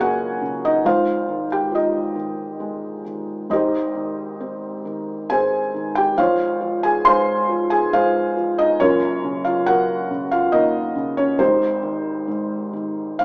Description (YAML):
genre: classical, lyrical solo piano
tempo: 68 BPM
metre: 3/4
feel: rubato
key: Ab major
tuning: A4 = 440 Hz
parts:
  - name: felt-muted upright piano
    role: solo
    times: 0.0-13.2 s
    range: Gb1 to C6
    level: -18 LUFS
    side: equal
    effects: none
room: wet studio reverb, RT60 0.6 s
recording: heard from further back in the room, small speaker sound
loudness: -17 LUFS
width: side -35 dB against mid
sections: 0.0-13.2 A section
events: none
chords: 0.0 Gbmaj7; 0.9 Fm9/Ab; 3.5 Abmaj7; 6.2 Dbmaj7/Ab; 8.8 Gbmaj7; 11.4 Abmaj7